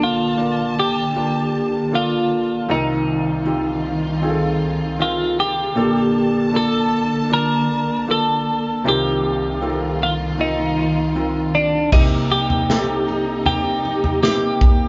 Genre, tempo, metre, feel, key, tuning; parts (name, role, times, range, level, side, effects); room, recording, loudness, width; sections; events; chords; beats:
pop ballad; 78 BPM; 4/4; straight; Bb major; A4 = 445 Hz
twelve-string electric guitar; melody; 0.0-14.9 s; D4 to Bb4; -23 LUFS; equal; vibrato effect
felt-muted upright piano; accompaniment; 0.0-14.9 s; Bb1 to Bb4; -24 LUFS; equal
warm studio string section; sustained chords; 0.0-14.9 s; C2 to A5; -27 LUFS; equal
picked steel-string acoustic guitar; arpeggios; 11.9-14.9 s; C3 to G4; -32 LUFS; equal
natural country drum kit; drums; 11.9-14.8 s; crash cymbal, kick drum, snare drum, toms; -19 LUFS; equal
moderate studio reverb, RT60 0.7 s; band playing live in one room, nothing above 7.6 kHz; -19 LUFS; mono
0.0-11.9 A section; 11.9-14.9 B section
0.0 Bbmaj7; 2.7 F7sus4/C; 5.8 Bbmaj7; 8.8 F7sus4/C; 11.9 Cm7
0.39 1.16 1.93 | 2.69 3.46 4.23 5.00 | 5.77 6.54 7.31 8.08 | 8.85 9.62 10.39 11.16 | 11.93 12.69 13.46 14.23